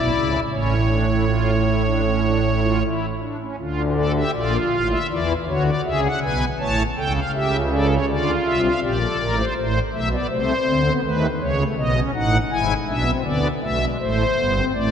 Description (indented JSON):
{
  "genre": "classical, baroque-style 3-part fugue for pipe organ",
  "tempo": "80 BPM",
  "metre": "4/4",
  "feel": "straight",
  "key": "unclear",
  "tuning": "A4 = 440 Hz",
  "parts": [
    { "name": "pipe organ, strings celeste", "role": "solo", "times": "0.0-14.9 s", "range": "G1 to A5", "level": "-18 LUFS", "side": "equal", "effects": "none" }
  ],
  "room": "wet church reverb, RT60 3.2 s",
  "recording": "dark, warm production",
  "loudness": "-18 LUFS",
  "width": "side -8 dB against mid",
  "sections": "0.0-3.6 A section; 3.6-14.9 B section",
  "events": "none",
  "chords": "0.0 E7(no3); 0.5 A; 3.6 Dm; 5.1 E7; 6.6 A7; 8.1 Dm; 9.6 Am; 11.0 B7; 12.5 E7/G#; 14.0 Am",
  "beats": "| 0.51 1.27 2.04 2.82 | 3.59 4.34 5.09 5.84 | 6.58 7.34 8.08 8.82 | 9.56 10.29 11.02 11.76 | 12.51 13.25 13.99 14.75"
}